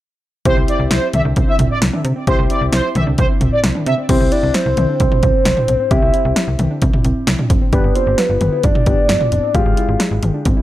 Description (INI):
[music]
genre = synth-pop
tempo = 132 BPM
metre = 4/4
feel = straight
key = C major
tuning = A4 = 440 Hz
[part]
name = analog synth brass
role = second line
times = 0.5-3.9 s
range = C5 to E5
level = -20 LUFS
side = right 1 dB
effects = chorus, tape echo
[part]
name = warm concert grand piano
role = accompaniment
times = 0.5-10.6 s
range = Ab3 to G4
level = -24 LUFS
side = left 3 dB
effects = none
[part]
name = soft round pluck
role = arpeggios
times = 0.5-10.6 s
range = C4 to G4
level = -26 LUFS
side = right 2 dB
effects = chorus, tape echo
[part]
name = slap-like FM bass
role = bass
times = 0.5-10.5 s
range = F1 to C3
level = -19 LUFS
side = equal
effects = none
[part]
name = punchy analog drum machine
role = drums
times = 0.5-10.6 s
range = crash cymbal, hi-hat, kick drum, snare drum, toms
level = -16 LUFS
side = equal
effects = none
[part]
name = soft octave-layered synth lead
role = melody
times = 4.1-10.0 s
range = B4 to F5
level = -18 LUFS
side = equal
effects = chorus, phaser
[sound]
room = little or no reverb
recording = dry, gritty hardware recording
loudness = -13 LUFS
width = side -14 dB against mid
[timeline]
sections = 0.5-4.1 A section; 4.1-10.6 B section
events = drum fill 10.5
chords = 0.5 C; 9.5 Fmadd9/Ab